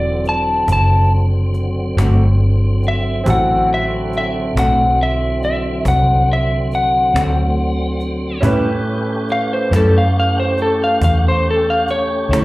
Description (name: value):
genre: slow blues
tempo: 46 BPM (dotted quarters)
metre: 12/8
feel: straight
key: D mixolydian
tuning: A4 = 440 Hz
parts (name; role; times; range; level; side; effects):
- electric slide guitar; melody; 0.0-12.4 s; A4 to A5; -17 LUFS; left 1 dB; slapback echo
- bright upright piano; accompaniment; 0.0-12.4 s; C4 to B4; -26 LUFS; right 2 dB; slapback echo
- tonewheel organ; sustained chords; 0.0-12.4 s; D3 to G4; -23 LUFS; equal; slow rotary speaker, chorus vibrato
- vintage muted fingered electric bass; bass; 0.0-12.4 s; E1 to A2; -17 LUFS; equal; none
- cajon; drums; 0.3-12.4 s; none; -25 LUFS; equal; none
- electric guitar through a small old amp; accompaniment; 2.0-12.4 s; A2 to F#4; -22 LUFS; left 1 dB; harmonic tremolo, slapback echo
room: moderate club reverb, RT60 0.6 s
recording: live gig heard through the venue's PA, club reverb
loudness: -13 LUFS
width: side -19 dB against mid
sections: 0.0-12.4 A section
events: electric slide guitar solo 0.0-12.4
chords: 0.0 D7; 8.4 A7